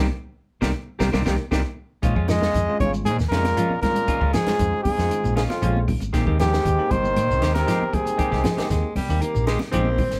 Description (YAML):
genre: afrobeat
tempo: 117 BPM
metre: 4/4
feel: straight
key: Bb dorian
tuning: A4 = 440 Hz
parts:
  - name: bell-like tine electric piano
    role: accompaniment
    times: 0.0-10.0 s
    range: Ab3 to G5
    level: -34 LUFS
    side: equal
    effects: none
  - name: semi-hollow electric guitar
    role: arpeggios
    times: 0.0-10.2 s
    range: C3 to G3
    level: -32 LUFS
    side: equal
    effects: none
  - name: semi-hollow electric guitar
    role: stabs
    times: 0.0-10.1 s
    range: Eb3 to C5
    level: -33 LUFS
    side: equal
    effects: none
  - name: hollow-body short-scale fingered electric bass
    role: bass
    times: 0.0-10.2 s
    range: G1 to Bb2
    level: -26 LUFS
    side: equal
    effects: none
  - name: compact cocktail drum kit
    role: drums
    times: 0.6-10.2 s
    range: hi-hat, kick drum, snare drum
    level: -30 LUFS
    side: equal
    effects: none
  - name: claves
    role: percussion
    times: 0.6-10.1 s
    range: none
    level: -45 LUFS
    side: equal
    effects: none
  - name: congas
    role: percussion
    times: 0.6-10.1 s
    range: none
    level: -33 LUFS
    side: equal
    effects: none
  - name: shekere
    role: percussion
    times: 0.6-10.2 s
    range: none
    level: -35 LUFS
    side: equal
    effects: none
  - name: mellow trumpet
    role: melody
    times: 2.3-8.7 s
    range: F4 to Eb5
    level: -26 LUFS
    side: equal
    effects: none
  - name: growling trombone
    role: second line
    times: 2.3-8.7 s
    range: F2 to Ab3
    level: -32 LUFS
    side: equal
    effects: none
  - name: raspy baritone saxophone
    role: second line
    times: 8.4-10.2 s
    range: G3 to C4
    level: -29 LUFS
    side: equal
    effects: none
room: moderate small room reverb, RT60 0.5 s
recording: band playing live in one room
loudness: -22 LUFS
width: mono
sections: 0.0-2.0 A section; 2.0-10.2 B section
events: band accent 0.0-2.0; drum fill 1.0-2.0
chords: 0.0 Cm7; 2.0 Bbm7; 6.1 Abmaj7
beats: 0.49 1.01 1.52 | 2.03 2.55 3.06 3.57 | 4.09 4.60 5.11 5.63 | 6.14 6.65 7.17 7.68 | 8.19 8.71 9.22 9.73